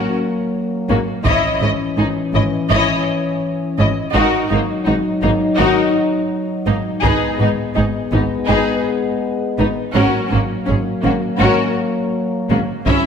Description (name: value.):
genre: cinematic, epic orchestral film score.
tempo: 83 BPM.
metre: 4/4.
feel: straight.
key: unclear.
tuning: A4 = 441 Hz.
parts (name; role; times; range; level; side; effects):
warm symphonic violin section; melody; 0.0-13.1 s; D#4 to E5; -27 LUFS; left 4 dB; none.
rich symphonic violin section; second line; 0.0-13.1 s; A#3 to G#4; -22 LUFS; left 4 dB; none.
warm symphonic viola section; accompaniment; 0.0-13.1 s; C#4 to D#5; -22 LUFS; right 2 dB; none.
mellow French horn section; sustained chords; 0.0-13.1 s; E3 to D#4; -20 LUFS; left 2 dB; none.
rich symphonic cello section; bass; 0.9-12.9 s; G#2; -22 LUFS; right 2 dB; none.
rich symphonic double bass section; bass; 0.9-13.0 s; G#1; -22 LUFS; right 3 dB; none.
taiko ensemble; drums; 1.3-2.7, 7.0-8.5, 12.9-13.1 s; none; -25 LUFS; equal; none.
room: wet scoring stage reverb, RT60 2.1 s.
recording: none.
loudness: -15 LUFS.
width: side -7 dB against mid.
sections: 0.0-13.1 A section.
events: build-up 0.0-13.1.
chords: 0.0 F#add9; 1.3 C#madd9/G#; 4.1 D#m/G#; 7.0 G#m; 9.9 F#add9/G#.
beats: 0.53 | 1.25 1.98 2.70 3.42 | 4.15 4.87 5.59 6.31 | 7.04 7.76 8.49 9.22 | 9.95 10.68 11.40 12.13 | 12.86.